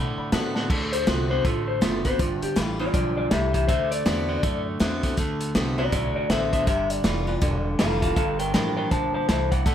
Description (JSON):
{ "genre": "rockabilly", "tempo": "161 BPM", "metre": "4/4", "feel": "swing 62% on 8ths", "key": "unclear", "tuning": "A4 = 440 Hz", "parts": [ { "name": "picked steel-string acoustic guitar", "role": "accompaniment", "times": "0.0-9.7 s", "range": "G2 to G4", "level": "-32 LUFS", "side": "left 4 dB", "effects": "none" }, { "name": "warm upright piano", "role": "accompaniment", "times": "0.0-0.6, 9.7 s", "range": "D5 to B5", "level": "-36 LUFS", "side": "left 4 dB", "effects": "none" }, { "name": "electric guitar at the edge of break-up", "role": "riff", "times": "0.0-9.7 s", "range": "G2 to B3", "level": "-30 LUFS", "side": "right 3 dB", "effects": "wide subtle chorus" }, { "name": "upright bass", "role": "bass", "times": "0.0-9.7 s", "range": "E1 to B2", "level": "-29 LUFS", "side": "equal", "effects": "none" }, { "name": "vintage drum kit", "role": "drums", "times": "0.3-9.7 s", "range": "crash cymbal, hi-hat, kick drum, snare drum", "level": "-26 LUFS", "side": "equal", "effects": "none" }, { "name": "electric guitar through a small old amp", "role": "melody", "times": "0.9-9.7 s", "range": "F4 to A5", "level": "-26 LUFS", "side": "left 2 dB", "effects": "tape echo" } ], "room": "light reverb, small room reverb", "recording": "none", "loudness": "-21 LUFS", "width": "side -10 dB against mid", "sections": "0.7-9.7 A section", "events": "drum fill 0.5", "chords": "0.0 D7; 2.2 G7; 3.7 D7; 6.7 G7; 8.2 Gm7" }